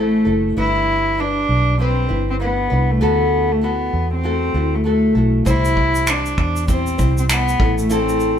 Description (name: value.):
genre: acoustic pop.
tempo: 98 BPM.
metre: 4/4.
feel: swing 60% on 16ths.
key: D mixolydian.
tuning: A4 = 439 Hz.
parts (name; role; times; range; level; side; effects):
warm cello; melody; 0.0-8.4 s; A3 to E4; -19 LUFS; left 1 dB; none.
nylon-string guitar; accompaniment; 0.0-8.4 s; A2 to C5; -22 LUFS; left 2 dB; none.
vintage muted fingered electric bass; bass; 0.0-8.4 s; F#1 to E2; -20 LUFS; right 1 dB; none.
vintage brush drum kit; drums; 5.5-8.4 s; finger snaps, kick drum, shaker; -20 LUFS; equal; none.
room: moderate stone room reverb, RT60 1.2 s.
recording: band playing live in one room.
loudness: -15 LUFS.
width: side -8 dB against mid.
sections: 0.0-8.4 A section.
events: none.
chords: 0.0 Am; 0.6 G6; 3.0 Dadd9; 5.5 C; 7.6 Am.